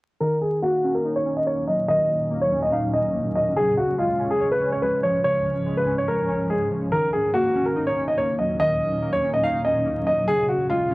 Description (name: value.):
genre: hip hop.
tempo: 143 BPM.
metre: 4/4.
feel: half-time.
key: Eb minor.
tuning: A4 = 440 Hz.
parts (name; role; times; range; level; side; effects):
dark grand piano; melody; 0.2-10.9 s; F4 to F5; -21 LUFS; equal; low-pass filter, cassette tape.
warbly lo-fi synth keys; accompaniment; 0.2-10.9 s; Db3 to Db5; -27 LUFS; equal; chorus, low-pass filter, cassette tape.
granular cloud pad; sustained chords; 1.4-10.9 s; Db2 to Db4; -31 LUFS; equal; built-in reverb, low-pass filter, cassette tape.
room: moderate small room reverb, RT60 0.6 s.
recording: home recording on cassette, vinyl crackle.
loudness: -20 LUFS.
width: side -21 dB against mid.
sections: 0.2-10.9 A section.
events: filter sweep 0.2-10.9.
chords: 0.2 Ebm7; 3.6 Db; 6.9 Ebm7; 10.3 Db.